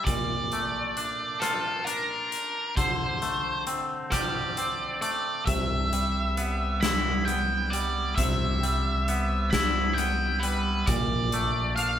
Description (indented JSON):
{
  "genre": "post-rock",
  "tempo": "44 BPM (dotted quarters)",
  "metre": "6/8",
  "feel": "straight",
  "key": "unclear",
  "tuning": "A4 = 442 Hz",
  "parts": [
    { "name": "octave-fuzz lead guitar", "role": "melody", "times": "0.0-12.0 s", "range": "A4 to B5", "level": "-28 LUFS", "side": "right 1 dB", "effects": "distortion" },
    { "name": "twangy electric guitar", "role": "arpeggios", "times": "0.0-12.0 s", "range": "Bb2 to G4", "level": "-31 LUFS", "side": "left 1 dB", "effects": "spring reverb" },
    { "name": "huge arena drum kit", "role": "drums", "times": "0.1-12.0 s", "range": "hi-hat, kick drum, rim click, snare drum", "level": "-31 LUFS", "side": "equal", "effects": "none" },
    { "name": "growling fingered electric bass", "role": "bass", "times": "5.5-12.0 s", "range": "Bb1 to C2", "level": "-29 LUFS", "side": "equal", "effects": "overdrive" }
  ],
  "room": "wet studio ambience, RT60 0.5 s",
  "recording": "band playing live in one room",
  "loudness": "-24 LUFS",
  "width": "side -10 dB against mid",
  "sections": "0.0-12.0 A section",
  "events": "none",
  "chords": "0.1 Bbmaj7; 2.8 D7sus4; 5.5 Cmaj7; 10.9 Bbmaj7",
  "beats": "| 0.07 1.42 | 2.77 4.12 | 5.48 6.83 | 8.18 9.53 | 10.88"
}